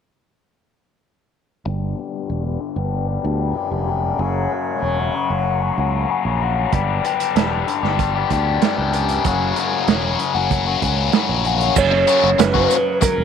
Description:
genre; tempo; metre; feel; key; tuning
psychedelic rock; 95 BPM; 4/4; straight; unclear; A4 = 439 Hz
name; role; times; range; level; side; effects
biting overdriven guitar; riff; 1.7-13.1 s; F#2 to G4; -20 LUFS; left 9 dB; phaser, low-pass filter
fingered electric bass; bass; 1.7-13.2 s; E1 to D2; -22 LUFS; right 2 dB; none
tanpura; drone; 3.5-13.2 s; F#2 to F#3; -27 LUFS; right 1 dB; none
vintage drum kit; drums; 6.7-13.2 s; crash cymbal, hi-hat, kick drum, snare drum; -21 LUFS; right 7 dB; none
clean lap steel guitar; melody; 11.8-13.2 s; A#4 to C#5; -17 LUFS; right 1 dB; slapback echo
egg shaker; percussion; 11.8-13.2 s; none; -31 LUFS; right 21 dB; none
room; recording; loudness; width
moderate spring reverb, RT60 2.5 s; 1960s-style stereo with parts hard left and right; -17 LUFS; side -7 dB against mid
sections
1.7-11.8 A section; 11.8-13.2 B section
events
filter sweep on overdriven electric guitar 1.7-11.8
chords
1.7 G; 4.2 F#; 6.7 G; 9.2 F#

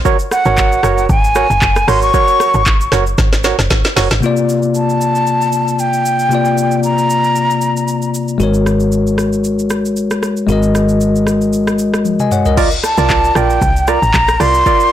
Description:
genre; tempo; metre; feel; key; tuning
amapiano; 115 BPM; 4/4; swing 55% on 16ths; unclear; A4 = 440 Hz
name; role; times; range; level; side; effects
woody log drum bass; bass; 0.0-4.2, 13.0-14.6 s; Gb1 to C2; -16 LUFS; equal; none
percussive organ stab; stabs; 0.1-4.1, 12.6-14.9 s; F4 to D5; -17 LUFS; right 8 dB; chorus, ping-pong delay
afro-pop drum kit; drums; 0.1-14.9 s; crash cymbal, handclaps, hi-hat, kick drum, rim click, shaker, snare drum, toms; -17 LUFS; equal; overdrive
breathy mellow silver concert flute; melody; 0.3-8.1, 12.8-14.9 s; Gb5 to Db6; -14 LUFS; equal; ping-pong delay
bell-like tine electric piano; accompaniment; 4.2-12.7 s; C3 to Ab5; -14 LUFS; left 3 dB; none
fingered electric bass; bass; 8.4-12.5 s; Ab1; -19 LUFS; right 1 dB; none
room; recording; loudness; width
light reverb; blown-out, overdriven recording, overdrive; -11 LUFS; side -11 dB against mid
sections
0.0-4.2 A section; 4.2-12.6 B section; 12.6-14.9 A section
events
drop 0.0-4.2, 12.6-14.9; drum fill 3.2-4.2, 12.1-12.6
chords
0.1 Ab9sus4; 4.2 C9sus4; 8.4 Ab9sus4; 12.6 C9sus4

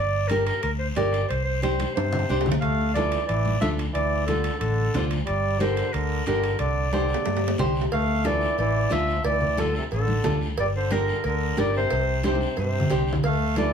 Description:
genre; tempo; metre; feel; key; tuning
latin, cumbia; 181 BPM; 4/4; straight; D minor; A4 = 440 Hz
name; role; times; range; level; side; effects
clear clarinet; melody; 0.0-13.7 s; A4 to F5; -27 LUFS; equal; none
fingered electric bass; bass; 0.0-13.7 s; G1 to G2; -26 LUFS; equal; none
nylon-string guitar; accompaniment; 0.3-13.7 s; D4 to C5; -27 LUFS; right 1 dB; none
congas; percussion; 0.3-13.7 s; none; -30 LUFS; left 1 dB; none
guiro; percussion; 0.3-13.7 s; none; -40 LUFS; left 3 dB; none
timbales and cowbell; percussion; 0.3-13.7 s; none; -33 LUFS; right 2 dB; none
brilliant trombone; second line; 1.9-13.7 s; C3 to A3; -31 LUFS; right 1 dB; none
room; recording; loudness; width
wet studio ambience, RT60 0.5 s; heard from further back in the room; -22 LUFS; side -7 dB against mid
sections
0.0-7.9 A section; 7.9-13.7 A section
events
drum fill 1.8-2.6, 6.9-7.9, 12.2-13.2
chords
0.0 Gm; 1.3 Csus2; 2.6 Dmadd9; 5.3 Gm; 6.6 Csus2; 7.9 Dmadd9; 10.6 Gm; 11.9 Csus2

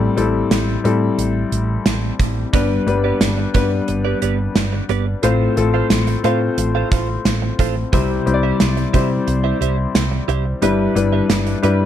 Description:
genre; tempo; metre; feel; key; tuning
1980s-style pop; 89 BPM; 4/4; straight; unclear; A4 = 437 Hz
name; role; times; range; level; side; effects
warm grand piano; accompaniment; 0.0-11.9 s; G2 to D5; -19 LUFS; left 5 dB; none
woody fretless electric bass; bass; 0.0-11.9 s; G1 to C3; -20 LUFS; right 1 dB; none
gated 80s drum kit; drums; 0.2-11.8 s; hi-hat, kick drum, snare drum; -19 LUFS; right 2 dB; none
direct-recorded clean electric guitar; riff; 2.5-11.8 s; B3 to F5; -24 LUFS; right 16 dB; lush chorus, tape echo
room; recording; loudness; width
little or no reverb; none; -15 LUFS; side -10 dB against mid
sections
0.0-11.9 A section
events
none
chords
0.0 Am7; 2.5 G; 5.2 F/A; 7.9 C; 10.6 G6

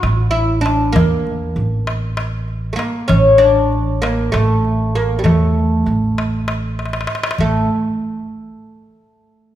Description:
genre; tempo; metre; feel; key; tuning
Turkish makam ensemble; 196 BPM (eighths); 7/8; straight; A makam hicaz; A4 = 440 Hz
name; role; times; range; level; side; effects
oud; melody; 0.0-7.7 s; G3 to F#4-40c; -17 LUFS; equal; none
upright bass; bass; 0.0-7.7 s; A1 to E2; -19 LUFS; right 1 dB; none
darbuka; percussion; 0.0-7.7 s; none; -20 LUFS; equal; none
room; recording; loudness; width
wet recital hall reverb, RT60 1.6 s; recorded in a church or concert hall; -14 LUFS; side -12 dB against mid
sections
0.0-7.4 A section; 7.4-9.5 B section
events
drum fill 6.8-7.4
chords
none

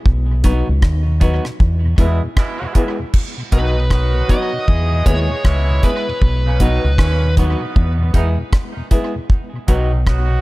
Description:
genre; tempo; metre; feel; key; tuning
roots reggae; 78 BPM; 4/4; swing 62% on 16ths; B major; A4 = 440 Hz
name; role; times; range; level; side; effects
deep dub fingered electric bass; bass; 0.1-10.4 s; B1 to E2; -16 LUFS; equal; none
deep reggae drum kit; drums; 0.1-10.3 s; crash cymbal, hi-hat, kick drum, rim click; -15 LUFS; equal; none
mellow tonewheel organ; accompaniment; 0.3-10.4 s; E2 to E4; -29 LUFS; left 1 dB; none
semi-hollow electric guitar; accompaniment; 0.4-9.9 s; F#3 to G#4; -28 LUFS; right 3 dB; tape echo
warm concert grand piano; stabs; 0.4-9.9 s; D#4 to B4; -27 LUFS; left 5 dB; none
clear horn section; second line; 2.0-10.4 s; G#2 to G#4; -27 LUFS; right 4 dB; tape echo
bluesy overdriven lead guitar; melody; 3.5-7.3 s; B4 to D#5; -24 LUFS; left 1 dB; distortion, tape echo
room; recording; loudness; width
small room reverb; none; -14 LUFS; side -20 dB against mid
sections
0.0-3.1 A section; 3.1-10.4 B section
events
band accent 0.1-3.1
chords
0.1 B; 1.6 E; 3.1 B; 4.7 E; 6.2 B; 7.8 E; 9.3 B

